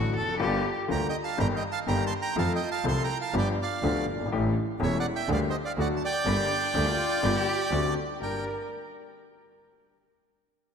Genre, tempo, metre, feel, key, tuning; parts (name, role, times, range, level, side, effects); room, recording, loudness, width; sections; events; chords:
tango; 123 BPM; 4/4; rubato; G minor; A4 = 440 Hz
warm cello; second line; 0.0-0.7, 6.5-8.4 s; D4 to Bb4; -32 LUFS; left 2 dB; tape echo
warm baby grand piano; accompaniment; 0.0-8.4 s; E1 to A4; -30 LUFS; left 4 dB
clear double bass; bass; 0.0-8.4 s; E1 to F2; -30 LUFS; right 3 dB
bandoneon; melody; 0.9-8.4 s; C5 to C6; -30 LUFS; right 3 dB; tape echo
wet plate reverb, RT60 2.6 s; dreamy mix soaked in reverb; -25 LUFS; side -6 dB against mid
0.0-8.2 A section; 8.2-10.2 B section
0.4 Gm7; 1.4 Eb/G; 2.4 F; 3.3 G7; 4.3 A7; 5.3 Gm/D; 5.8 D; 6.3 Gm; 7.7 D7; 8.2 Gm